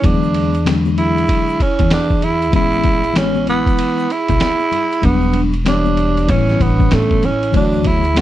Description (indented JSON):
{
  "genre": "hip hop, jazz-hop",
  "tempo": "96 BPM",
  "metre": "4/4",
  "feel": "swing 63% on 16ths",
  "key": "unclear",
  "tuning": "A4 = 440 Hz",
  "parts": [
    { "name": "growling tenor saxophone", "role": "melody", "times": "0.0-8.2 s", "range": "A3 to F#4", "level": "-18 LUFS", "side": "right 2 dB", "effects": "none" },
    { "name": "vibraphone with soft mallets", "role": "second line", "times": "0.0-8.2 s", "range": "C#4 to G#4", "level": "-25 LUFS", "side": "right 9 dB", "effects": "none" },
    { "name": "mellow tine electric piano", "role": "accompaniment", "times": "0.0-8.2 s", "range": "D3 to C#5", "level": "-19 LUFS", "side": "left 5 dB", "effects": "medium stereo tremolo" },
    { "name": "upright bass", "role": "bass", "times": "0.0-8.2 s", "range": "E1 to A2", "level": "-19 LUFS", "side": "equal", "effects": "none" },
    { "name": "lo-fi sampler-style drum kit", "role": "drums", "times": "0.0-8.2 s", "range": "hi-hat, kick drum, ride cymbal, snare drum", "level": "-19 LUFS", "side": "equal", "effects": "none" },
    { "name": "egg shaker and congas", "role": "percussion", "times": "0.0-8.2 s", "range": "none", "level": "-29 LUFS", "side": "left 14 dB", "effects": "none" }
  ],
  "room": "light reverb",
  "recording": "dark, warm production, nothing above 10.4 kHz",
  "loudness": "-13 LUFS",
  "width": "side -13 dB against mid",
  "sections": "0.0-8.2 A section",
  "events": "none",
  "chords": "0.0 E7; 2.5 Amaj9; 5.0 Em7; 6.3 A7; 7.5 Dmaj7"
}